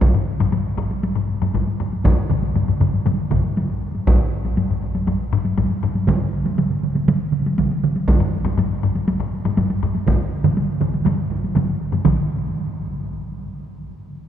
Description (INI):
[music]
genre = japanese traditional, taiko drum ensemble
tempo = 120 BPM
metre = 4/4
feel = straight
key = none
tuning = none
[part]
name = solo taiko drums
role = percussion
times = 0.0-12.3 s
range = none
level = -24 LUFS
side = equal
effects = none
[part]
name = taiko ensemble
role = percussion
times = 0.0-12.3 s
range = none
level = -24 LUFS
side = right 1 dB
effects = none
[part]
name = taiko ensemble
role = percussion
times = 0.1-12.5 s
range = none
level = -23 LUFS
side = left 4 dB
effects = none
[part]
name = taiko ensemble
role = percussion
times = 2.0-12.5 s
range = none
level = -23 LUFS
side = right 4 dB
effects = none
[sound]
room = wet cathedral reverb, RT60 5.5 s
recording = recorded in a church or concert hall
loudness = -18 LUFS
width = side -10 dB against mid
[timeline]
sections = 0.0-12.0 A section; 12.0-14.0 B section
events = speeding up 0.0-14.0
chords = none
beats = | 0.02 0.53 1.03 1.54 | 2.05 2.55 3.06 3.56 | 4.06 4.57 5.07 5.57 | 6.07 6.58 7.08 7.58 | 8.07 8.57 9.07 9.57 | 10.07 10.56 11.06 11.55 | 12.05